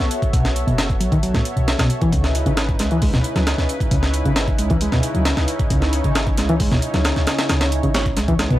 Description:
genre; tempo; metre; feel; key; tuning
breakbeat, breaks; 134 BPM; 4/4; straight; C# minor; A4 = 440 Hz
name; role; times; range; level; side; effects
lush unison pad; sustained chords; 0.0-8.6 s; C#3 to E5; -25 LUFS; equal; chorus, vintage 12-bit sampler grit, sidechain pumping
warm 808-style bass; bass; 0.0-8.6 s; F#1 to C#2; -22 LUFS; equal; none
breakbeat sampler-style drum kit; drums; 0.0-8.6 s; hi-hat, kick drum, snare drum; -20 LUFS; equal; none
electronic hi-hat; drums; 0.0-8.6 s; none; -36 LUFS; right 5 dB; none
reed electric piano; riff; 0.3-8.6 s; A2 to G#3; -21 LUFS; equal; overdrive, fast tremolo, tube saturation, tape echo
swell; sound effects; 8.5-8.6 s; none; -27 LUFS; left 2 dB; none
room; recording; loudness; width
light reverb; vinyl crackle; -16 LUFS; side -15 dB against mid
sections
0.0-8.6 A section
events
swell 8.5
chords
0.0 B7sus4; 2.1 C#m7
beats
| 0.33 0.78 1.23 1.68 | 2.12 2.57 3.02 3.47 | 3.91 4.36 4.81 5.26 | 5.71 6.15 6.60 7.05 | 7.50 7.94 8.39

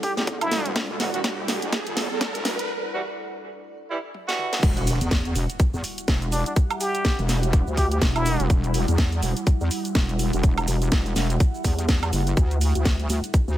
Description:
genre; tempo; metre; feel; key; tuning
bass house; 124 BPM; 4/4; swing 58% on 16ths; E minor; A4 = 440 Hz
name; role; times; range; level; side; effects
trumpet with plunger mute; melody; 0.0-0.8, 6.3-8.5 s; D4 to G4; -29 LUFS; equal; dub echo
deep dark ambient pad; sustained chords; 0.0-13.6 s; G3 to F#5; -32 LUFS; right 1 dB; chorus, built-in reverb, sidechain pumping
electronic kick drum; drums; 0.0-13.5 s; none; -20 LUFS; equal; high-pass filter on kick
garage drum kit; drums; 0.0-13.6 s; crash cymbal, hi-hat, shaker, snare drum, toms, woodblock; -28 LUFS; equal; none
riser and impact; sound effects; 0.0-6.6 s; none; -33 LUFS; right 1 dB; none
granular cloud pad; texture; 0.0-2.7 s; A4 to D5; -36 LUFS; right 2 dB; built-in reverb, sidechain pumping
wobble bass; bass; 0.2-13.6 s; E1 to E2; -24 LUFS; equal; chorus, sidechain pumping, high-pass filter
clear horn section; stabs; 1.0-4.6 s; E3 to F#4; -31 LUFS; right 2 dB; vintage 12-bit sampler grit, sidechain pumping, low-pass filter, dub echo
room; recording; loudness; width
little or no reverb; high-pass filter; -21 LUFS; side -13 dB against mid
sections
0.0-4.6 A section; 4.6-13.6 B section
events
build-up 0.0-4.6; drum fill 0.0-2.7, 4.1-4.6; riser 0.0-2.7; break 2.7-4.6; drop 4.6-13.6; impact 4.6-6.6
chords
0.0 Emadd9; 12.4 Dsus4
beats
0.27 | 0.76 1.24 1.73 2.21 | 2.69 3.18 3.66 4.14 | 4.63 5.11 5.60 6.08 | 6.56 7.05 7.53 8.02 | 8.50 8.98 9.47 9.95 | 10.44 10.92 11.40 11.89 | 12.37 12.85 13.34

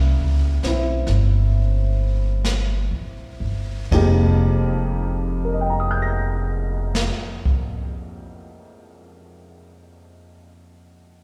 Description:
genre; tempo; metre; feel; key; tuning
jazz ballad; 39-48 BPM; 4/4; swing 68% on 8ths; F minor; A4 = 442 Hz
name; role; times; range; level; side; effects
warm upright piano; accompaniment; 0.0-11.2 s; F2 to Bb6; -28 LUFS; equal; slapback echo
upright bass; bass; 0.0-7.1 s; F1 to Db2; -22 LUFS; equal; none
jazz brush drum kit; drums; 0.6-7.9 s; brushed snare drum, hi-hat, kick drum, ride cymbal, snare drum; -29 LUFS; equal; none
room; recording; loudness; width
light reverb, studio ambience; live gig heard through the venue's PA, recital hall reverb; -21 LUFS; mono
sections
0.0-3.9 A section; 3.9-10.0 B section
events
slowing down 0.0-3.9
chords
0.0 C7b9; 3.9 Fm11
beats
1.07 2.44 | 3.92 5.44 6.95 8.45

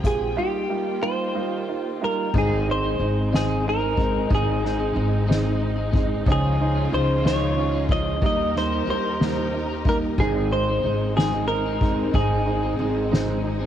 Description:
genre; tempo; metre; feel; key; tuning
six-eight pop ballad; 61 BPM (dotted quarters); 6/8; straight; Ab major; A4 = 440 Hz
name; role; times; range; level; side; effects
direct-recorded clean electric guitar; melody; 0.0-13.4 s; G4 to Eb5; -26 LUFS; equal; wide subtle chorus, cassette tape, analog delay
warm upright piano; accompaniment; 0.0-13.7 s; F3 to G4; -28 LUFS; right 8 dB; cassette tape
warm studio string section; sustained chords; 0.0-13.7 s; Db3 to G5; -32 LUFS; left 1 dB; cassette tape
upright bass; bass; 0.0-13.7 s; Ab1 to Eb2; -26 LUFS; left 1 dB; none
soft-mallet drum kit; drums; 0.0-13.6 s; crash cymbal, hi-hat, kick drum, ride cymbal, snare drum; -27 LUFS; left 1 dB; none
twelve-string electric guitar; arpeggios; 2.3-13.7 s; Ab2 to Bb4; -32 LUFS; left 10 dB; lush chorus, cassette tape, analog delay
room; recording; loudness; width
light reverb; home recording on cassette; -20 LUFS; side -10 dB against mid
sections
0.0-2.3 A section; 2.3-13.7 B section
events
break 0.4-2.3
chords
0.4 Ebadd9; 2.3 Ab; 6.3 Dbadd9; 8.2 Eb; 10.2 Ab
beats
| 0.38 1.36 | 2.34 3.32 | 4.30 5.29 | 6.27 7.25 | 8.22 9.20 | 10.18 11.16 | 12.14 13.12

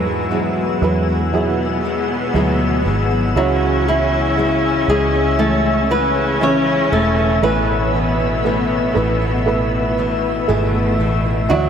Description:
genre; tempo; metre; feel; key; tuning
pop ballad; 59 BPM; 4/4; straight; A major; A4 = 437 Hz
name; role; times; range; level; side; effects
flamenco guitar; melody; 0.0-11.7 s; E3 to C#5; -21 LUFS; equal; tape echo
warm symphonic cello section; second line; 0.0-11.7 s; G#2 to C#4; -22 LUFS; left 2 dB; none
felt-muted upright piano; accompaniment; 0.0-11.7 s; A2 to E5; -22 LUFS; right 5 dB; none
glassy FM pad; sustained chords; 0.0-11.7 s; G#4 to E6; -23 LUFS; left 2 dB; ensemble chorus, built-in reverb
fingerpicked steel-string acoustic guitar; arpeggios; 0.0-11.7 s; E2 to E4; -26 LUFS; left 6 dB; none
vintage muted fingered electric bass; bass; 0.0-11.7 s; E1 to E2; -21 LUFS; equal; none
room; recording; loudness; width
wet huge ambient reverb, RT60 9.2 s; dreamy mix soaked in reverb; -15 LUFS; side -8 dB against mid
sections
0.0-11.7 A section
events
none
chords
0.0 Eadd9; 3.4 C#m; 7.4 Asus2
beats
0.31 1.33 2.35 | 3.36 4.38 5.40 6.41 | 7.43 8.45 9.46 10.48 | 11.50

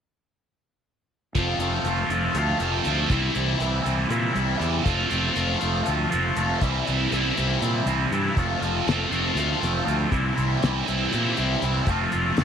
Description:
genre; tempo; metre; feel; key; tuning
psychedelic rock; 240 BPM (eighths); 7/8; straight; unclear; A4 = 440 Hz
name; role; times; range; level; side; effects
overdriven electric guitar; riff; 1.4-12.4 s; C3 to F4; -23 LUFS; equal; phaser
fuzz fingered electric bass; bass; 1.4-12.4 s; F1 to Bb2; -27 LUFS; equal; overdrive
cloth-damped thuddy drum kit; drums; 1.4-12.4 s; hi-hat, kick drum, snare drum; -28 LUFS; left 2 dB; none
room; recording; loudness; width
light reverb; 1960s-style stereo; -21 LUFS; side -8 dB against mid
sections
1.4-12.4 A section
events
none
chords
1.4 F; 3.1 C; 4.9 F; 6.6 C; 8.4 F; 10.1 C; 11.9 F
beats
| 1.36 1.61 1.86 2.11 2.36 2.61 2.86 | 3.11 3.36 3.61 3.86 4.11 4.36 4.61 | 4.86 5.11 5.36 5.61 5.86 6.11 6.36 | 6.61 6.86 7.11 7.36 7.61 7.86 8.11 | 8.36 8.61 8.86 9.11 9.36 9.61 9.86 | 10.11 10.36 10.61 10.86 11.12 11.37 11.62 | 11.87 12.12 12.37

